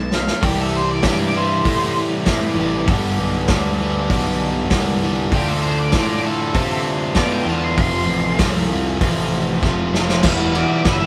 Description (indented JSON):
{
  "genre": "garage rock duo or trio",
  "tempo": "98 BPM",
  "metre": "4/4",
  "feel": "straight",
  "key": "unclear",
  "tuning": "A4 = 439 Hz",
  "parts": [
    { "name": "octave-fuzz lead guitar", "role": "melody", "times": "0.0-11.1 s", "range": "G4 to C6", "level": "-26 LUFS", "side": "equal", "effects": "distortion" },
    { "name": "fuzz picked electric bass", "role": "bass", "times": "0.0-11.0 s", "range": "E1 to C3", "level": "-25 LUFS", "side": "equal", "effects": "overdrive" },
    { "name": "vintage drum kit", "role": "drums", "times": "0.1-11.0 s", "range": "crash cymbal, hi-hat, kick drum, ride cymbal, snare drum", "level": "-24 LUFS", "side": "equal", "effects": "none" },
    { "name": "crunchy overdriven guitar", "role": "riff", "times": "0.4-11.1 s", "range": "E2 to G4", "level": "-22 LUFS", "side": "equal", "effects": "none" }
  ],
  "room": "moderate studio reverb, RT60 0.6 s",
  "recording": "band playing live in one room",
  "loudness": "-19 LUFS",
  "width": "mono",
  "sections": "0.4-10.2 A section",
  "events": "drum fill 0.0-0.4, 9.6-10.2",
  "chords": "0.4 C; 2.9 G; 5.3 Dm; 7.8 F; 10.2 Em"
}